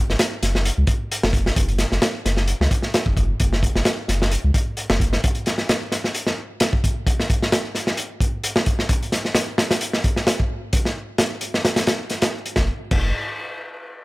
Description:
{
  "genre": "breakbeat, breaks",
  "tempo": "131 BPM",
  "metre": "4/4",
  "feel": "swing 54% on 16ths",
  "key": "unclear",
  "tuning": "A4 = 440 Hz",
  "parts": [
    { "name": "saturated sub bass", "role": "bass", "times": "0.1-5.2, 12.6-13.1 s", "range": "F#1 to C#2", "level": "-21 LUFS", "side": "equal", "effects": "none" },
    { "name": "crunchy breakbeat drum kit", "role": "drums", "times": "0.1-13.0 s", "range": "crash cymbal, hi-hat, kick drum, snare drum", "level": "-20 LUFS", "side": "equal", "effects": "none" }
  ],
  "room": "little or no reverb",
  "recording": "none",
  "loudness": "-19 LUFS",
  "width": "side -21 dB against mid",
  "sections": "0.0-12.6 A section; 12.6-14.0 B section",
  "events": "none",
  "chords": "none"
}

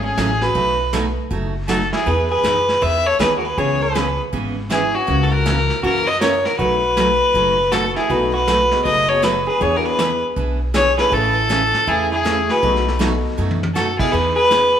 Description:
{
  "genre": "country, western swing",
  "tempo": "159 BPM",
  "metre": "4/4",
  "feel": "swing 63% on 8ths",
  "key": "E major",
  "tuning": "A4 = 440 Hz",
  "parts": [
    { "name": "clear fiddle", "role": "melody", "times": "0.0-14.8 s", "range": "F#4 to E5", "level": "-17 LUFS", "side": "left 1 dB", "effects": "none" },
    { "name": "hollow-body jazz guitar", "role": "second line", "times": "0.0-14.8 s", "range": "C#4 to B4", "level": "-25 LUFS", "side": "right 2 dB", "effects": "none" },
    { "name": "upright bass", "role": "bass", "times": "0.0-14.7 s", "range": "F#1 to F#2", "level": "-24 LUFS", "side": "equal", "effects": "none" },
    { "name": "picked steel-string acoustic guitar", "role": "accompaniment", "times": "0.2-14.6 s", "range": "B2 to G#4", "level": "-25 LUFS", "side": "right 3 dB", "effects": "none" },
    { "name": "vintage brush drum kit", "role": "drums", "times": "0.2-14.8 s", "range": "brushed snare drum, crash cymbal, hi-hat, kick drum, snare drum, toms", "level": "-26 LUFS", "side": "equal", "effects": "none" },
    { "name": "warm upright piano", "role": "accompaniment", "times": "8.1-14.1 s", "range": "A3 to A4", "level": "-27 LUFS", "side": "left 2 dB", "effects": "none" }
  ],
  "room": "wet large studio reverb, RT60 1.3 s",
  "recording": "band playing live in one room",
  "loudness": "-15 LUFS",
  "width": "side -9 dB against mid",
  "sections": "0.0-14.8 A section",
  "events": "drum fill 13.4-13.8",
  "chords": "0.0 F#madd9; 0.6 B7; 2.1 Emaj7; 3.6 C#m7; 5.1 F#7/C#; 6.6 B7; 9.6 E7; 11.1 Amaj7; 12.6 B7; 14.1 Emaj7"
}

